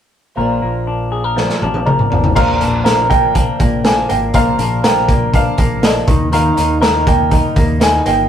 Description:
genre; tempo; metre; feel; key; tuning
jangly indie pop; 121 BPM; 4/4; straight; Bb major; A4 = 440 Hz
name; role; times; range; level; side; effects
fingerpicked twelve-string acoustic guitar; accompaniment; 0.4-8.3 s; Bb2 to Eb4; -23 LUFS; right 3 dB; none
semi-hollow electric guitar; arpeggios; 0.4-8.3 s; Bb2 to Bb4; -17 LUFS; left 2 dB; spring reverb
deep dub picked electric bass; bass; 0.4-8.3 s; G1 to Eb2; -21 LUFS; equal; none
raw garage drum kit; drums; 1.4-8.2 s; crash cymbal, hi-hat, kick drum, snare drum, toms; -15 LUFS; equal; none
warm upright piano; melody; 1.9-8.3 s; D5 to Ab5; -19 LUFS; right 2 dB; none
room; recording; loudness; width
wet booth ambience, RT60 0.2 s; rough rehearsal-room recording; -12 LUFS; side -9 dB against mid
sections
0.4-2.4 A section; 2.4-8.3 B section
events
drum fill 1.4-2.4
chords
0.4 Bb; 6.1 Eb

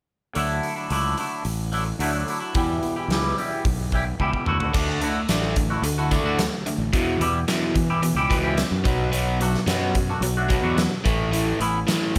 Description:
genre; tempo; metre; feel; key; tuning
indie rock; 109 BPM; 4/4; straight; D major; A4 = 441 Hz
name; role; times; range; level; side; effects
twangy electric guitar; riff; 0.3-11.9 s; E2 to G4; -28 LUFS; equal; phaser
fuzz fingered electric bass; bass; 0.4-12.2 s; A1 to E3; -28 LUFS; equal; overdrive
big rock drum kit; drums; 0.4-12.2 s; crash cymbal, hi-hat, kick drum, snare drum, toms; -29 LUFS; equal; none
overdriven electric guitar; riff; 4.7-12.2 s; E2 to D4; -27 LUFS; equal; lush chorus, slapback echo
room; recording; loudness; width
light reverb, small room ambience; none; -23 LUFS; mono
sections
0.4-4.7 A section; 4.7-12.2 B section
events
drum fill 4.2-4.7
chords
0.4 Dadd9; 2.5 Em; 4.5 Dadd9; 6.9 Em; 8.9 Bm7; 11.1 Aadd9

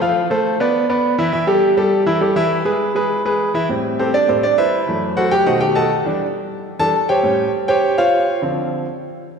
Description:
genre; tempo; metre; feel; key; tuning
latin; 203 BPM; 4/4; straight; A minor; A4 = 439 Hz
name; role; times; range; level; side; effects
bright concert grand piano; solo; 0.0-8.8 s; F#2 to A5; -15 LUFS; equal; none
room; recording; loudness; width
wet church reverb, RT60 2.6 s; recorded in a church or concert hall; -15 LUFS; side -6 dB against mid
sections
0.0-3.7 A section; 3.7-9.4 B section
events
grand piano solo 3.7-9.4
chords
0.2 Dm7; 0.7 Bmadd11; 1.3 Emadd11; 2.5 E; 3.7 Am9; 4.9 F#m7b5; 5.5 B7b9; 6.1 Em7; 7.2 A7alt; 8.4 Dm7

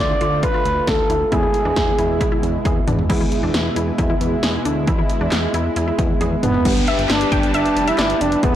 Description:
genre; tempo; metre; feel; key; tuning
synth-pop; 135 BPM; 4/4; straight; unclear; A4 = 441 Hz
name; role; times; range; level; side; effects
expressive synth lead; melody; 0.0-2.6, 6.4-8.5 s; B3 to D5; -19 LUFS; right 1 dB; chorus, tape echo
funky polysynth comp; accompaniment; 0.0-8.6 s; G3 to A4; -26 LUFS; equal; chorus
lush unison pad; sustained chords; 0.0-8.6 s; B2 to B5; -26 LUFS; equal; chorus
fat analog bass; bass; 0.0-8.6 s; E1 to E2; -24 LUFS; equal; none
resonant blip pluck; arpeggios; 0.2-6.6 s; D4 to A4; -28 LUFS; left 2 dB; chorus, tape echo
punchy analog drum machine; drums; 0.2-8.5 s; crash cymbal, handclaps, hi-hat, kick drum, snare drum, toms; -21 LUFS; equal; overdrive
downlifter; sound effects; 6.7-8.6 s; none; -28 LUFS; equal; none
wide unison pluck; second line; 6.9-8.3 s; D5 to G5; -24 LUFS; left 1 dB; tape echo
room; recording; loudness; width
light reverb; blown-out, overdriven recording, overdrive; -16 LUFS; side -11 dB against mid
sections
0.0-3.1 A section; 3.1-6.7 B section; 6.7-8.6 C section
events
drum fill 2.7-3.1, 6.2-6.7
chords
0.0 Dm; 1.3 E; 6.7 Gadd9

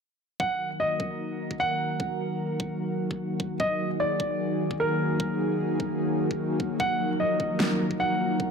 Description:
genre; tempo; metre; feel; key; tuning
heavy wobble dubstep; 150 BPM; 4/4; swing 55% on 16ths, half-time; Eb harmonic minor; A4 = 439 Hz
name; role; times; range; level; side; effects
warm grand piano; melody; 0.4-8.5 s; Bb4 to Gb5; -29 LUFS; equal; dub echo
lush unison pad; sustained chords; 0.4-8.5 s; Eb3 to Bb4; -28 LUFS; equal; chorus, vintage 12-bit sampler grit, sidechain pumping
electronic kick drum; drums; 0.4-8.5 s; none; -33 LUFS; equal; high-pass filter on kick
electronic snare drum; drums; 7.6-7.7 s; none; -27 LUFS; equal; none
room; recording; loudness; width
moderate digital room reverb, RT60 1.2 s; none; -25 LUFS; side -6 dB against mid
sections
0.4-8.5 A section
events
none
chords
0.4 Ebm

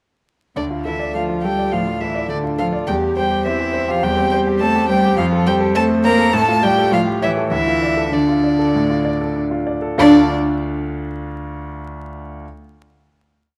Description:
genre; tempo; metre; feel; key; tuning
quick classical-period movement for piano quartet; 96-105 BPM; 4/4; straight; D minor; A4 = 440 Hz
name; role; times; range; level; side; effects
rich violin; melody; 0.6-10.3 s; D5 to Bb5; -23 LUFS; equal; none
dark violin; second line; 0.6-10.3 s; D4 to Bb4; -22 LUFS; equal; none
rich cello; second line; 0.6-10.3 s; D3 to D4; -24 LUFS; equal; none
clear grand piano; accompaniment; 0.6-12.4 s; D2 to F5; -23 LUFS; equal; none
room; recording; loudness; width
moderate recital hall reverb, RT60 1.7 s; close, detailed microphones, vinyl crackle; -17 LUFS; mono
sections
0.6-10.0 A section; 10.0-12.4 final chord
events
none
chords
0.6 Dm; 2.9 C/E; 5.2 F; 6.3 Dm/A; 6.9 A7; 7.5 Dm

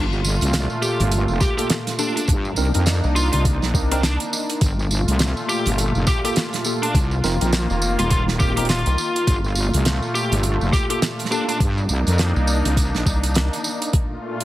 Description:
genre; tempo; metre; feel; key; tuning
glitch hop; 103 BPM; 4/4; swing 60% on 16ths; G minor; A4 = 441 Hz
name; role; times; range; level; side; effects
high-gain lead guitar; melody; 0.0-11.6 s; D4 to G4; -27 LUFS; left 1 dB; distortion, vintage 12-bit sampler grit, dub echo
warm analog pad; sustained chords; 0.0-14.4 s; Bb2 to F4; -26 LUFS; equal; chorus, sidechain pumping
wobble bass; bass; 0.0-13.0 s; Eb1 to G2; -20 LUFS; equal; chorus, tube saturation
tambourine; percussion; 0.1-13.9 s; none; -29 LUFS; right 2 dB; none
damped 70s drum kit; drums; 0.4-14.4 s; hi-hat, snare drum; -25 LUFS; right 1 dB; none
electronic kick drum; drums; 1.4-14.1 s; none; -20 LUFS; equal; none
tine electric piano; stabs; 1.6-11.5 s; Bb3 to Bb4; -28 LUFS; equal; medium stereo tremolo, sidechain pumping, dub echo
rubbery square bass; bass; 3.0-4.2, 7.7-13.5 s; F1 to C2; -21 LUFS; equal; none
room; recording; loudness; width
light reverb, small room ambience; heavily compressed radio sound; -18 LUFS; side -15 dB against mid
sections
0.0-14.4 A section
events
none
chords
0.0 Gm9; 2.3 Cm9; 4.6 Gm9; 6.9 F7sus4; 9.3 Gm9; 11.6 Cm9; 13.9 Fadd11/Bb

